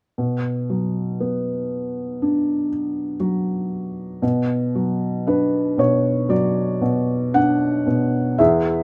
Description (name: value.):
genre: classical, lyrical solo piano.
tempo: 58 BPM.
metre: 4/4.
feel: rubato.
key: B minor.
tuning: A4 = 440 Hz.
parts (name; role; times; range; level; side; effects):
felt-muted upright piano; solo; 0.2-8.8 s; E2 to F#5; -21 LUFS; equal; none.
room: light reverb.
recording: none.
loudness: -21 LUFS.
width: mono.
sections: 0.2-4.2 A section; 4.2-8.8 B section.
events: none.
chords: 0.2 Bm.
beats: | 0.19 1.21 2.22 3.21 | 4.23 5.27 6.31 7.36 | 8.39.